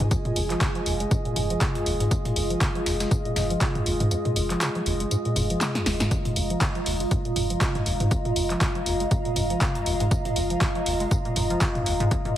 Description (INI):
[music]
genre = acid house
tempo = 120 BPM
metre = 4/4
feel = swing 56% on 16ths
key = F minor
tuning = A4 = 440 Hz
[part]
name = dark analog pad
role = sustained chords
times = 0.0-12.4 s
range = Ab3 to F5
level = -31 LUFS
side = equal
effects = wide subtle chorus, sidechain pumping
[part]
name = acid bass, square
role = riff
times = 0.0-12.3 s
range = Eb2 to Ab3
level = -28 LUFS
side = equal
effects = lush chorus, cassette tape, sidechain pumping
[part]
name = warm sub bass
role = bass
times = 0.0-12.1 s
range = F1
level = -31 LUFS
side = equal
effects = sidechain pumping
[part]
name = punchy analog drum machine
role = drums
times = 0.0-12.3 s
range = handclaps, hi-hat, snare drum, toms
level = -29 LUFS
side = equal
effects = none
[part]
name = warbly tape-like pad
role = texture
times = 0.0-12.4 s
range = F4 to Bb5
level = -31 LUFS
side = right 1 dB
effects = chorus, built-in reverb, phaser, sidechain pumping
[part]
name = breakbeat sampler-style drum kit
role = drums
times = 0.1-12.2 s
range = hi-hat, snare drum, tambourine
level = -36 LUFS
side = left 1 dB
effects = high-pass filter on perc, high-pass filter on snare, high-pass filter on hats
[part]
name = electronic kick drum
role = drums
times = 0.1-12.2 s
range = none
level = -25 LUFS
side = equal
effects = none
[sound]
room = light reverb, digital ambience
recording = heavily compressed radio sound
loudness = -22 LUFS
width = side -12 dB against mid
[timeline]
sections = 0.0-12.4 A section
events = filter sweep on acid bass 0.0-12.4; kick drops out 4.1-6.1; drum fill 5.6-6.1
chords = 0.0 Fm7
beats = | 0.11 0.61 1.11 1.61 | 2.11 2.61 3.11 3.61 | 4.11 4.61 5.11 5.61 | 6.11 6.61 7.11 7.61 | 8.11 8.61 9.11 9.61 | 10.11 10.61 11.11 11.61 | 12.11